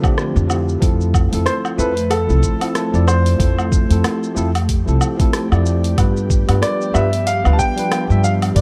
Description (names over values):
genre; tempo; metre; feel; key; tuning
sunset chillout; 93 BPM; 4/4; swing 57% on 16ths; unclear; A4 = 439 Hz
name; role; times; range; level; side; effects
warm baby grand piano; melody; 0.0-8.6 s; A4 to A5; -23 LUFS; equal; digital delay
tine electric piano; accompaniment; 0.0-8.6 s; F3 to E5; -24 LUFS; equal; digital delay
ethereal airy pad; sustained chords; 0.0-8.6 s; D3 to B4; -29 LUFS; equal; ensemble chorus, built-in reverb
deep house drum kit; drums; 0.0-8.6 s; hi-hat, rim click, shaker, woodblock; -27 LUFS; equal; none
electronic kick drum; drums; 0.0-8.6 s; none; -19 LUFS; equal; none
upright bass; bass; 0.4-8.6 s; C2 to G2; -19 LUFS; equal; none
room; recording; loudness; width
light reverb, digital ambience; dark, warm production; -17 LUFS; mono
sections
0.0-8.6 A section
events
none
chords
0.5 Fmaj7; 6.0 G7